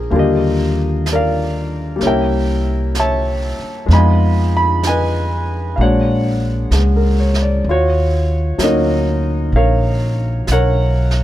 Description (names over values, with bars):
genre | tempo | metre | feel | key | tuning
jazz ballad | 64 BPM | 4/4 | swing 68% on 8ths | Eb minor | A4 = 436 Hz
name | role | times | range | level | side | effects
clear grand piano | accompaniment | 0.0-11.2 s | D3 to Cb6 | -17 LUFS | left 1 dB | none
upright bass | bass | 0.0-11.2 s | Bb1 to F2 | -16 LUFS | equal | none
jazz brush drum kit | drums | 0.1-11.2 s | brushed snare drum, hi-hat, snare drum | -29 LUFS | right 3 dB | none
room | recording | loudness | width
little or no reverb | dark, warm production | -14 LUFS | side -13 dB against mid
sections
0.0-11.2 A section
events
none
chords
0.1 Ebmaj9; 2.0 C7b9; 3.9 Fm7b5; 5.8 Bb7alt; 7.6 Ebm9